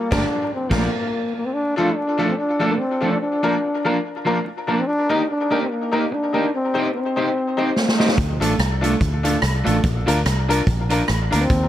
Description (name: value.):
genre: ska.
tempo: 144 BPM.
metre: 4/4.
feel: swing 57% on 8ths.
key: Bb major.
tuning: A4 = 440 Hz.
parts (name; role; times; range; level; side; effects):
breathy trombone; melody; 0.0-8.0, 11.3-11.7 s; Bb3 to F4; -22 LUFS; left 1 dB; tape echo.
electric guitar at the edge of break-up; accompaniment; 0.1-11.4 s; F3 to Bb4; -23 LUFS; right 3 dB; none.
bright upright piano; stabs; 0.1-11.4 s; D4 to C5; -25 LUFS; left 4 dB; tape echo.
fingered electric bass; bass; 0.1-0.9, 8.2-11.7 s; G1 to Eb2; -21 LUFS; equal; none.
swinging big-band drum kit; drums; 0.1-0.9, 7.8-11.6 s; crash cymbal, hi-hat, kick drum, rim click, snare drum; -22 LUFS; right 1 dB; none.
room: light reverb.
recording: vinyl crackle.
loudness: -18 LUFS.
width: side -12 dB against mid.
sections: 0.0-1.5 A section; 1.5-11.7 B section.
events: band accent 0.0-1.5; drum fill 7.8-8.2.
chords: 0.0 Gm; 0.7 Bb; 1.5 Dm; 3.2 Bb; 4.9 Eb; 6.5 Cm; 8.2 Dm; 9.8 Bb.